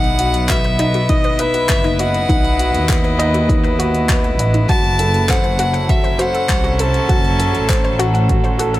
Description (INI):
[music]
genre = piano and strings electronica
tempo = 100 BPM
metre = 4/4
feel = straight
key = unclear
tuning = A4 = 440 Hz
[part]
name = rich violin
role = melody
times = 0.0-8.0 s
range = D#5 to A5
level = -21 LUFS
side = left 1 dB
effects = tape echo
[part]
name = rich string quartet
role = sustained chords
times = 0.0-8.8 s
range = F#3 to D#5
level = -24 LUFS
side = equal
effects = sidechain pumping
[part]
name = dark grand piano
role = riff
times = 0.0-8.8 s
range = D#4 to F#5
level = -21 LUFS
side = equal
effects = tape echo
[part]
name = muted studio double bass section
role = bass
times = 0.0-8.8 s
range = F#1 to D#2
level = -19 LUFS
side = equal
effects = tube saturation, sidechain pumping
[part]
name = deep house drum kit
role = drums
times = 0.0-8.8 s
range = handclaps, hi-hat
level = -24 LUFS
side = left 1 dB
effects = none
[part]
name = analog pluck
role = arpeggios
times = 0.5-8.8 s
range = D#4 to F#5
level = -26 LUFS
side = left 2 dB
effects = chorus, sidechain pumping, tape echo
[part]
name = electronic kick drum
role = drums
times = 0.5-8.4 s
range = none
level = -18 LUFS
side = equal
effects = none
[sound]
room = light reverb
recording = none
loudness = -13 LUFS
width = side -15 dB against mid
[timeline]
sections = 0.0-8.8 A section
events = none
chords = 0.0 B; 4.7 F#dim